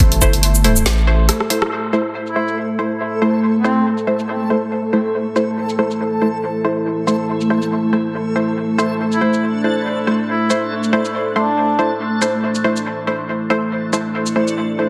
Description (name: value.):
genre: deep dubstep.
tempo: 140 BPM.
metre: 4/4.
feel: swing 55% on 16ths, half-time.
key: A minor.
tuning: A4 = 441 Hz.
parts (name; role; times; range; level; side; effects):
deep dark ambient pad; sustained chords; 0.0-14.9 s; A3 to A4; -25 LUFS; equal; chorus, built-in reverb.
saturated sub bass; bass; 0.0-1.3 s; G1 to A1; -17 LUFS; equal; none.
deep house drum kit; drums; 0.0-14.6 s; hi-hat, rim click, shaker, snare drum; -23 LUFS; equal; low-pass filter on hats, studio reverb, low-pass filter on perc, low-pass filter on snare.
filtered dub chord stab; stabs; 0.2-14.9 s; A3 to C5; -22 LUFS; equal; subtle chorus, dub echo.
backwards swelling texture; texture; 2.6-14.9 s; A3 to A4; -25 LUFS; equal; built-in reverb.
clear duduk; melody; 2.3-3.9, 9.1-12.0 s; C4 to E4; -26 LUFS; equal; dub echo.
room: moderate spring reverb, RT60 2.3 s.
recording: dense, heavily limited modern master.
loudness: -18 LUFS.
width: mono.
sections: 0.0-1.7 A section; 1.7-14.9 B section.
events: drum fill 1.3-1.7; band accent 1.6.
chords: 0.0 Am.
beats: | 0.00 0.43 0.86 1.29 | 1.72 2.15 2.57 3.00 | 3.43 3.86 4.29 4.72 | 5.15 5.57 6.00 6.43 | 6.86 7.29 7.72 8.15 | 8.57 9.00 9.43 9.86 | 10.29 10.72 11.15 11.57 | 12.00 12.43 12.86 13.29 | 13.72 14.15 14.57.